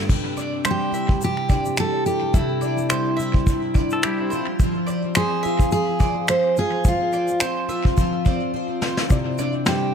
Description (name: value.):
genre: acoustic pop.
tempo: 107 BPM.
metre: 4/4.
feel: swing 55% on 16ths.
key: C major.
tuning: A4 = 440 Hz.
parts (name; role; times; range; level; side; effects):
picked plugged-in twelve-string acoustic guitar; accompaniment; 0.0-9.9 s; G2 to G4; -24 LUFS; left 1 dB; double-tracked left and right, analog delay.
soft brush drum kit; drums; 0.1-9.8 s; crash cymbal, finger snaps, kick drum, shaker, snare drum; -22 LUFS; equal; none.
mandolin; arpeggios; 0.4-9.9 s; C5 to E5; -32 LUFS; right 5 dB; analog delay.
picked steel-string acoustic guitar; melody; 0.7-9.9 s; E4 to C5; -24 LUFS; right 1 dB; analog delay.
pedal steel guitar; second line; 3.9-4.5 s; C4 to A4; -29 LUFS; left 2 dB; analog delay.
barky reed electric piano; accompaniment; 9.1-9.9 s; C4 to D5; -29 LUFS; left 8 dB; fast tremolo, analog delay.
room: light reverb, small room reverb.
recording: echo-heavy mix.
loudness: -19 LUFS.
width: side -7 dB against mid.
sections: 0.1-9.9 A section.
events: drum fill 8.5-9.1.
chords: 0.1 Cadd9; 4.3 Fm; 9.1 Cadd9.